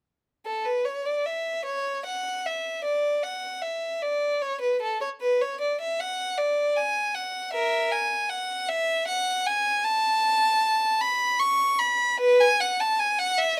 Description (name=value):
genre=classical, baroque-style suite movement for unaccompanied violin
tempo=77 BPM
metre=3/4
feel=rubato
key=A major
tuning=A4 = 440 Hz
part: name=clear violin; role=solo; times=0.5-13.6 s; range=A4 to C#6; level=-25 LUFS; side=equal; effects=none
room=light reverb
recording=none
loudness=-25 LUFS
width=mono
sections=0.5-13.6 A section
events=none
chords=none